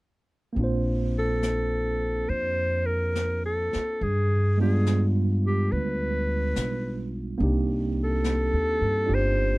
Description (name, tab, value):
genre	jazz ballad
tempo	71 BPM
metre	4/4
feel	swing 69% on 8ths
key	Bb major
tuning	A4 = 440 Hz
part	barky tine electric piano	accompaniment	0.5-9.6 s	G3 to C5	-29 LUFS	right 2 dB	medium stereo tremolo
part	upright bass	bass	0.6-9.6 s	G1 to G2	-26 LUFS	equal	none
part	jazz brush drum kit	drums	0.6-9.6 s	brushed snare drum, hi-hat, snare drum	-36 LUFS	left 2 dB	none
part	clear clarinet	melody	1.2-9.6 s	G4 to C5	-27 LUFS	equal	none
room	little or no reverb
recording	none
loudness	-23 LUFS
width	side -21 dB against mid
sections	0.6-9.6 A section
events	none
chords	0.6 Bbmaj9; 4.0 G7b9; 7.4 Cm9